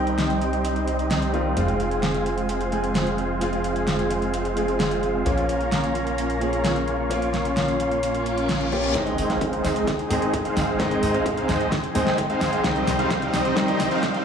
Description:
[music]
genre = EDM, festival progressive house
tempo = 130 BPM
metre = 4/4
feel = straight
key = Ab major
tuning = A4 = 441 Hz
[part]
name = clear baby grand piano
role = accompaniment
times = 0.0-14.2 s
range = Eb3 to Ab4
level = -27 LUFS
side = left 2 dB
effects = sidechain pumping, tape echo
[part]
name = lush unison pad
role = sustained chords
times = 0.0-14.2 s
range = Eb4 to C6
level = -30 LUFS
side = equal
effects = chorus, vintage 12-bit sampler grit, sidechain pumping
[part]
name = supersaw chords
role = riff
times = 0.0-14.2 s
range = G3 to F5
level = -25 LUFS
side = right 2 dB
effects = sidechain pumping, low-pass filter, tape echo
[part]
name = fat analog bass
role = bass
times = 0.0-14.1 s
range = F1 to C2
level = -30 LUFS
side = equal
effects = sidechain pumping
[part]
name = pop drum kit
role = drums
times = 0.1-14.2 s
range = hi-hat, snare drum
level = -28 LUFS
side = equal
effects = small room ambience
[part]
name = reverse cymbal and riser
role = sound effects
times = 8.2-14.2 s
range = none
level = -36 LUFS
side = left 1 dB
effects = none
[part]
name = electronic kick drum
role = drums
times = 9.0-14.1 s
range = none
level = -30 LUFS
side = equal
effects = high-pass filter on kick, small room ambience, high-pass filter on room
[sound]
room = moderate digital room reverb, RT60 1.2 s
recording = played on a big sound system in a bare room, large studio reverb, high-pass filter, small room ambience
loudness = -21 LUFS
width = side -7 dB against mid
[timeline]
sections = 0.0-9.0 A section; 9.0-14.2 B section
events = reverse cymbal 8.2-9.0; build-up 9.0-14.2; drum fill 9.0-14.2; filter sweep on supersaw synth 9.0-14.2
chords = 0.0 Cm; 1.6 Fm; 5.3 Bbm; 9.0 Ab; 12.6 Cm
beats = 0.18 0.64 1.10 | 1.57 2.03 2.49 2.95 | 3.41 3.88 4.34 4.80 | 5.26 5.72 6.18 6.64 | 7.11 7.57 8.03 8.49 | 8.95 9.41 9.88 10.34 | 10.80 11.26 11.72 12.18 | 12.64 13.11 13.57 14.03

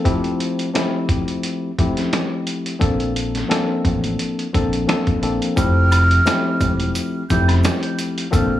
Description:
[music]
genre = hip hop, boom-bap hip-hop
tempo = 87 BPM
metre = 4/4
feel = swing 54% on 16ths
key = F major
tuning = A4 = 439 Hz
[part]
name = tine electric piano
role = accompaniment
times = 0.0-8.6 s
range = F3 to A4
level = -21 LUFS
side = left 2 dB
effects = cassette tape, high-pass filter, low-pass filter
[part]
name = trip hop sampler-style drum kit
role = drums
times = 0.1-8.5 s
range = hi-hat, kick drum, snare drum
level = -22 LUFS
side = right 1 dB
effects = none
[part]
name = deep dub fingered electric bass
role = bass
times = 2.8-8.6 s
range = E1 to Bb1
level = -20 LUFS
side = equal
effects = none
[part]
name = breathy mellow concert flute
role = melody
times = 5.6-8.6 s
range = F6 to G6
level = -22 LUFS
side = right 2 dB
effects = high-pass filter, low-pass filter, digital delay
[part]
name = tube shaker and woodblock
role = percussion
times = 5.6-8.5 s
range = none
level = -33 LUFS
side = left 2 dB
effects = none
[sound]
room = light reverb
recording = small room ambience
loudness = -17 LUFS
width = side -13 dB against mid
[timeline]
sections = 0.0-5.6 A section; 5.6-8.6 B section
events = break 0.0-2.8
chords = 0.1 Fmaj9; 2.8 Bbmaj9; 5.6 Fmaj9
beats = | 0.06 0.74 1.43 2.12 | 2.81 3.50 4.19 4.88 | 5.57 6.26 6.95 7.64 | 8.33

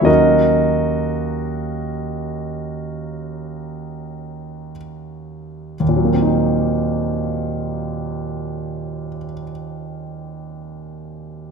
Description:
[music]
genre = classical, impressionist solo piano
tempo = 28-35 BPM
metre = 3/4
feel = rubato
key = Eb minor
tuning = A4 = 440 Hz
[part]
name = warm concert grand piano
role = solo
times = 0.0-11.5 s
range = Eb2 to E5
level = -19 LUFS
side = right 1 dB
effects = none
[sound]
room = wet scoring stage reverb, RT60 1.6 s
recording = minimal, uncompressed stereo recording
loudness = -18 LUFS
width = side -5 dB against mid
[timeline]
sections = 0.0-5.8 A section; 5.8-11.5 B section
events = slowing down 0.0-5.8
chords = 0.1 Ebm7; 5.8 Ebm6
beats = | 0.07 1.81 3.72 | 5.80 7.91 10.05

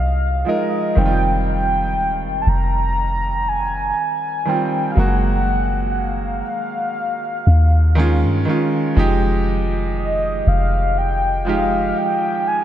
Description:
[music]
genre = contemporary R&B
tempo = 60 BPM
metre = 4/4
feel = swing 54% on 16ths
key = F minor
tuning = A4 = 442 Hz
[part]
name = mellow horn-like synth lead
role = melody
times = 0.0-12.6 s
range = Eb5 to Bb5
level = -21 LUFS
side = equal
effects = chorus, diffuse ambient delay
[part]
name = clear concert grand piano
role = accompaniment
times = 0.0-12.6 s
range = Eb3 to Bb4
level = -22 LUFS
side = right 2 dB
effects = none
[part]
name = soft 808-style bass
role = bass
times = 0.0-11.9 s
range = Eb1 to G2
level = -18 LUFS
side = equal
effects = none
[sound]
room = moderate cathedral reverb, RT60 5.4 s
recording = dreamy mix soaked in reverb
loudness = -16 LUFS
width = side -11 dB against mid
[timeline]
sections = 0.0-9.0 A section; 9.0-12.6 B section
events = none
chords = 0.0 Fm9; 1.0 Eb69; 5.0 Gbmaj9; 8.0 Eb9sus4; 9.0 Fm9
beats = | 0.97 1.97 2.97 3.97 | 4.97 5.97 6.97 7.97 | 8.97 9.97 10.97 11.97

